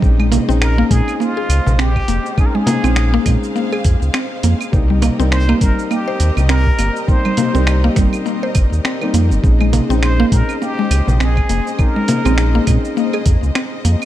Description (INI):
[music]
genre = organic downtempo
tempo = 102 BPM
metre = 4/4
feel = swing 58% on 16ths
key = Bb dorian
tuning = A4 = 438 Hz
[part]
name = felt-muted upright piano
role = accompaniment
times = 0.0-14.1 s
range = G3 to Eb4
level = -23 LUFS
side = left 2 dB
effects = sidechain pumping, digital delay, shimmer reverb
[part]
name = rich studio string section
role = sustained chords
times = 0.0-14.1 s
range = Ab3 to F5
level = -29 LUFS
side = equal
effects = sidechain pumping, shimmer reverb
[part]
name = round analog bass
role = bass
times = 0.0-14.0 s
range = F1 to Bb2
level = -15 LUFS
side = equal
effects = sidechain pumping
[part]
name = dusty soul sampler-style drum kit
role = drums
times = 0.0-14.1 s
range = cabasa, claves, finger snaps, hi-hat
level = -24 LUFS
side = right 2 dB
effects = none
[part]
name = electronic kick drum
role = drums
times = 0.0-13.4 s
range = none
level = -15 LUFS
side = equal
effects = none
[part]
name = mallet-like synth pluck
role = arpeggios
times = 0.2-14.1 s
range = G3 to C5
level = -20 LUFS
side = equal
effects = chorus, digital delay, shimmer reverb
[part]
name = frame drum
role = percussion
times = 0.3-12.2 s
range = none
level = -23 LUFS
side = left 2 dB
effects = none
[part]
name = trumpet with plunger mute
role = melody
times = 0.6-12.6 s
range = F4 to C5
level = -25 LUFS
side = equal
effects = tape echo, shimmer reverb
[sound]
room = light reverb, studio ambience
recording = dark, warm production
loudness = -13 LUFS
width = side -13 dB against mid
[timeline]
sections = 0.0-14.1 A section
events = none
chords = 0.0 Bbm11; 4.7 Cm7; 9.4 Bbm11